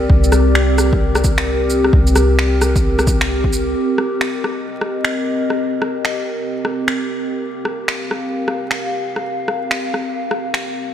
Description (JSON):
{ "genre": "future garage", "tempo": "131 BPM", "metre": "4/4", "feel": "swing 62% on 16ths", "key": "C minor", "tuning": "A4 = 440 Hz", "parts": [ { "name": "warbly tape-like pad", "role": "sustained chords", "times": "0.0-10.9 s", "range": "C4 to F5", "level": "-19 LUFS", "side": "left 1 dB", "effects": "chorus, built-in reverb, sidechain pumping" }, { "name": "soft 808-style bass", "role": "bass", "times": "0.0-3.7 s", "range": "C2", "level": "-17 LUFS", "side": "equal", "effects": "tube saturation, sidechain pumping" }, { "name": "electronic kick drum", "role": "drums", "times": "0.1-3.5 s", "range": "none", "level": "-17 LUFS", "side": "equal", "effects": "overdrive, studio reverb" }, { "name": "electronic shaker, rim click and finger snaps", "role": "drums", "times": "0.2-10.6 s", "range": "none", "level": "-22 LUFS", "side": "equal", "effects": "overdrive, studio reverb" } ], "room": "moderate church reverb, RT60 3.5 s", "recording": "dreamy mix soaked in reverb, vinyl crackle", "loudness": "-15 LUFS", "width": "side -10 dB against mid", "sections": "0.0-3.8 A section; 3.8-10.9 B section", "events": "none", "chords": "0.0 Gm/C; 3.8 Cm7" }